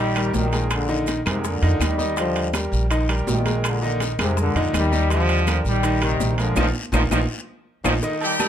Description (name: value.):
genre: latin, salsa.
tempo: 164 BPM.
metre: 4/4.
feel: straight.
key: Eb major.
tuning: A4 = 440 Hz.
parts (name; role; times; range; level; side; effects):
brilliant trombone section; melody; 0.0-7.9 s; Ab2 to G3; -24 LUFS; left 1 dB; plate reverb.
bright concert grand piano; accompaniment; 0.0-8.5 s; Eb3 to Eb5; -26 LUFS; equal; none.
upright bass; bass; 0.0-8.0 s; Bb1 to F2; -23 LUFS; equal; none.
bongos and cowbell; percussion; 0.2-8.5 s; none; -33 LUFS; left 7 dB; none.
claves; percussion; 0.2-8.5 s; none; -32 LUFS; left 8 dB; none.
congas; percussion; 0.2-8.5 s; none; -32 LUFS; left 2 dB; none.
maracas; percussion; 0.2-8.5 s; none; -37 LUFS; right 8 dB; none.
timbales and agogo bells; percussion; 0.2-8.5 s; none; -30 LUFS; right 6 dB; none.
guiro; percussion; 0.3-8.5 s; none; -37 LUFS; left 6 dB; none.
brilliant horn section; melody; 8.2-8.5 s; G3 to G4; -20 LUFS; left 1 dB; none.
room: light reverb.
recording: close, detailed microphones.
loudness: -19 LUFS.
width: side -10 dB against mid.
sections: 0.0-8.0 A section.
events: drum fill 6.6-8.0; band accent 6.6-8.0.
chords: 0.0 Eb; 0.7 Bb7sus4; 2.2 Ebmaj7; 3.6 Bb7sus4; 5.1 Ebmaj7; 6.6 Bbsus4.